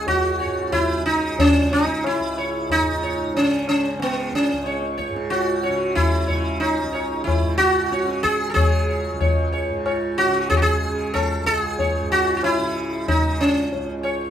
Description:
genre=indian classical, Hindustani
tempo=92 BPM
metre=4/4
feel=straight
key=C# raga darbari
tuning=A4 = 440 Hz
part: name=sitar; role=melody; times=0.0-14.3 s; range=B3 to C#5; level=-20 LUFS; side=equal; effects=none
part: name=tanpura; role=drone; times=0.0-14.3 s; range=C#2 to C#3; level=-28 LUFS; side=right 2 dB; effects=none
part: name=tabla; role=percussion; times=0.1-14.3 s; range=none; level=-24 LUFS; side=left 2 dB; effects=none
room=wet studio reverb, RT60 0.7 s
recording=minimal, uncompressed stereo recording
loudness=-18 LUFS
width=side -10 dB against mid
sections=0.0-14.3 A section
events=none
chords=none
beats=0.08 | 0.74 1.39 2.05 2.70 | 3.35 4.01 4.66 5.31 | 5.96 6.61 7.26 7.91 | 8.56 9.21 9.86 10.50 | 11.15 11.79 12.44 13.08 | 13.73

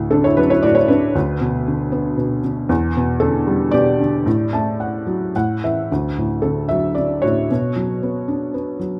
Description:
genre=classical, lyrical solo piano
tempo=115 BPM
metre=3/4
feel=rubato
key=D major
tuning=A4 = 440 Hz
part: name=felt-muted upright piano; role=solo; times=0.0-9.0 s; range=D2 to A5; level=-19 LUFS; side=equal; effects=none
room=light reverb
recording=close, detailed microphones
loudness=-19 LUFS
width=mono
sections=0.0-5.9 A section; 5.9-9.0 A section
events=felt piano fill 4.3-5.9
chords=0.0 Dadd9; 1.2 Bm/D; 2.7 Em7; 4.3 D/A; 5.3 A5; 5.9 D; 7.5 Bmadd9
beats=0.11 0.64 | 1.15 1.67 2.19 | 2.70 3.22 3.73 | 4.26 4.79 5.34 | 5.90 6.44 6.97 | 7.50 8.03 8.54

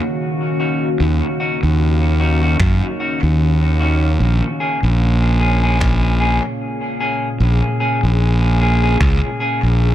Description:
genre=ambient dub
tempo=75 BPM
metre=4/4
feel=swing 57% on 16ths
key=Eb minor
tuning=A4 = 440 Hz
part: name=warbly tape-like pad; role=sustained chords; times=0.0-9.9 s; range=Bb2 to F5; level=-22 LUFS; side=left 1 dB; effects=chorus, built-in reverb
part: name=clean electric guitar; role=stabs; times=0.6-9.6 s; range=Bb3 to Ab4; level=-23 LUFS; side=left 1 dB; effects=dub echo
part: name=fuzz fingered electric bass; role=bass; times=1.0-9.9 s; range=Bb1 to Gb2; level=-14 LUFS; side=equal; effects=overdrive
part: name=electronic kick drum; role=drums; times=2.6-9.2 s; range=none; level=-18 LUFS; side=equal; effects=overdrive
part: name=finger snaps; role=drums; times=2.6-9.2 s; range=none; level=-32 LUFS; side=equal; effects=dub echo
room=studio reverb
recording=echo-heavy mix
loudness=-14 LUFS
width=side -12 dB against mid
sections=0.0-9.9 A section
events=none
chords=0.0 Ebm7; 4.2 Bbm7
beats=0.20 | 1.00 1.80 2.60 3.40 | 4.20 5.00 5.80 6.60 | 7.40 8.20 9.00 9.80

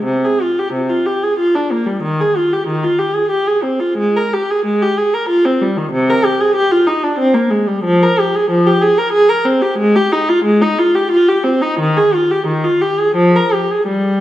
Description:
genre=classical, baroque-style suite movement for unaccompanied viola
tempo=82-95 BPM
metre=3/4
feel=rubato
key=C minor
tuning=A4 = 440 Hz
part: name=warm viola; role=solo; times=0.0-14.2 s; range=C3 to Bb4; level=-12 LUFS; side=equal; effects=none
room=wet recital hall reverb, RT60 1.4 s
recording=minimal, uncompressed stereo recording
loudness=-12 LUFS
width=side -14 dB against mid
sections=0.0-14.2 A section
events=none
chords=none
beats=| 0.03 0.72 1.37 | 2.02 2.68 3.32 | 4.00 4.66 5.29 | 5.93 6.57 7.20 | 7.87 8.53 9.16 | 9.80 10.46 11.12 | 11.80 12.48 13.16 | 13.86

